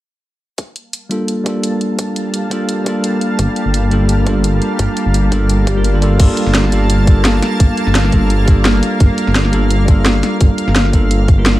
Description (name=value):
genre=liquid drum and bass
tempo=171 BPM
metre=4/4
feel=swing 54% on 16ths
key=G minor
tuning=A4 = 440 Hz
part: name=shimmering ambient pad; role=sustained chords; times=1.3-11.6 s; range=G3 to A5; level=-22 LUFS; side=equal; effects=chorus, built-in reverb, sidechain pumping
part: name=drum and bass drum kit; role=drums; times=0.6-11.5 s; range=crash cymbal, hi-hat, snare drum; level=-18 LUFS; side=equal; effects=studio reverb
part: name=electronic kick drum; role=drums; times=0.6-11.4 s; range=none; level=-11 LUFS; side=equal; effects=high-pass filter on kick, studio reverb
part: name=bell-like tine electric piano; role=accompaniment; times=1.1-11.6 s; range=G3 to Bb4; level=-17 LUFS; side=equal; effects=low-pass filter, digital delay
part: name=dark detuned saw bass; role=bass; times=3.4-11.6 s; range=G1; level=-14 LUFS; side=equal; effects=none
part: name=swell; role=sound effects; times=5.6-6.2 s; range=none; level=-25 LUFS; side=left 3 dB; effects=none
room=little or no reverb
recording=none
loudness=-11 LUFS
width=side -16 dB against mid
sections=0.6-6.2 A section; 6.2-11.6 B section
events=filter sweep on tine electric piano 0.6-6.2; filter sweep on ambient pad 0.6-6.2; swell 5.6-6.2; drop 6.2-11.6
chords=0.6 Gm9